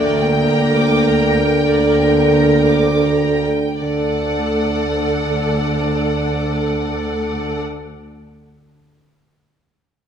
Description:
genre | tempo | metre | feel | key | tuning
classical, slow romantic movement for symphony orchestra | 26-37 BPM (dotted quarters) | 6/8 | rubato | D major | A4 = 441 Hz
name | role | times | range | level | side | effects
warm studio violin section | melody | 0.0-7.6 s | F#5 to G5 | -27 LUFS | left 3 dB | none
bright studio violin section | second line | 0.0-7.6 s | Bb4 to D6 | -25 LUFS | left 1 dB | none
dark bassoon | accompaniment | 0.0-7.6 s | D3 | -17 LUFS | right 2 dB | none
warm studio viola section | accompaniment | 0.0-7.6 s | Bb3 to A4 | -24 LUFS | equal | none
rich studio double bass section | bass | 0.0-7.6 s | D2 | -24 LUFS | right 2 dB | none
warm studio cello section | bass | 0.0-7.6 s | D2 | -24 LUFS | equal | none
room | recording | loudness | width
wet recital hall reverb, RT60 1.9 s | studio reverb | -14 LUFS | side -8 dB against mid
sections
0.0-3.8 A section; 3.8-8.2 B section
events
slowing down 0.0-3.8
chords
0.0 Gm/D; 3.8 D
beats
1.67 | 3.81 6.02

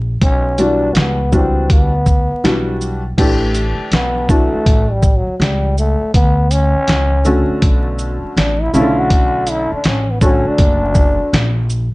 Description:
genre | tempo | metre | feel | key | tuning
hip hop, jazz-hop | 81 BPM | 4/4 | swing 64% on 16ths | unclear | A4 = 436 Hz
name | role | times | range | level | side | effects
upright bass | bass | 0.0-11.9 s | F#1 to D2 | -18 LUFS | equal | none
growling trombone | melody | 0.2-11.6 s | F#3 to F#4 | -18 LUFS | left 1 dB | none
dusty soul sampler-style drum kit | drums | 0.2-11.9 s | crash cymbal, hi-hat, kick drum, shaker, snare drum | -15 LUFS | equal | vintage 12-bit sampler grit
clear upright piano | accompaniment | 0.6-11.3 s | C#3 to C#5 | -18 LUFS | equal | none
room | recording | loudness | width
light reverb | vinyl crackle, nothing above 10.6 kHz | -12 LUFS | side -22 dB against mid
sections
0.0-3.2 A section; 3.2-11.9 B section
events
trombone solo 3.2-11.9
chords
0.2 Em9/B; 3.2 A7sus4; 6.1 Dmaj7; 8.7 Bm11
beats
| 0.22 0.96 1.70 2.44 | 3.18 3.92 4.66 5.40 | 6.14 6.88 7.62 8.36 | 9.11 9.85 10.59 11.33

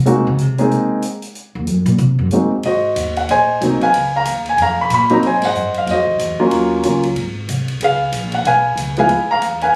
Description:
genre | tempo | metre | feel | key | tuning
jazz piano trio | 186 BPM | 4/4 | swing 61% on 8ths | Ab mixolydian | A4 = 440 Hz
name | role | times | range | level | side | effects
upright bass | bass | 0.0-9.8 s | Ab1 to Db3 | -23 LUFS | equal | none
warm grand piano | melody | 0.1-9.8 s | F3 to Cb6 | -17 LUFS | equal | none
swinging big-band drum kit | drums | 0.1-9.7 s | hi-hat, kick drum, ride cymbal, snare drum | -32 LUFS | equal | none
room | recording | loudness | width
light reverb | recorded on a phone in the room, club reverb, compression | -16 LUFS | mono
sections
0.0-2.6 A section; 2.6-9.8 B section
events
upright bass solo 0.0-2.6; band accent 5.4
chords
0.1 Ab7; 3.9 Db7; 5.2 Ab7; 6.5 Ebm7; 7.2 Ab; 7.8 Db7; 9.1 Ddim7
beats
| 0.07 0.39 0.71 1.04 | 1.36 1.68 2.00 2.33 | 2.65 2.97 3.29 3.62 | 3.94 4.26 4.58 4.91 | 5.23 5.55 5.88 6.20 | 6.52 6.84 7.17 7.49 | 7.81 8.13 8.46 8.78 | 9.10 9.42 9.74

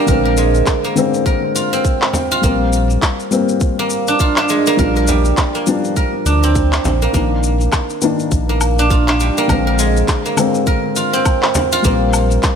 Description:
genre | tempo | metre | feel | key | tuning
organic downtempo | 102 BPM | 4/4 | swing 59% on 16ths | Bb mixolydian | A4 = 443 Hz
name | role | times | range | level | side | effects
felt-muted upright piano | accompaniment | 0.0-12.6 s | D3 to D4 | -19 LUFS | left 5 dB | sidechain pumping, tape echo
guzheng | arpeggios | 0.0-12.6 s | G3 to Bb4 | -17 LUFS | right 3 dB | tape echo
round analog bass | bass | 0.1-12.4 s | Bb1 to D2 | -16 LUFS | equal | none
electronic kick drum | drums | 0.1-12.6 s | none | -17 LUFS | equal | small room reverb
electronic shaker, handclaps and woodblock | drums | 0.1-12.6 s | none | -21 LUFS | left 2 dB | small room reverb
frame drum | percussion | 2.1-7.0, 11.6-11.7 s | none | -21 LUFS | left 1 dB | none
room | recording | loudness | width
light reverb, studio reverb | none | -13 LUFS | side -7 dB against mid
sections
0.0-12.6 A section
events
none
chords
0.1 Bb9; 2.4 Abmaj9/Bb; 4.8 Bb69; 7.1 Bbadd11; 9.5 Bb9; 11.8 Abmaj9/Bb (rootless)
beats
| 0.08 0.67 1.26 1.85 | 2.44 3.03 3.61 4.20 | 4.79 5.38 5.97 6.55 | 7.14 7.73 8.32 8.91 | 9.50 10.08 10.67 11.26 | 11.85 12.44

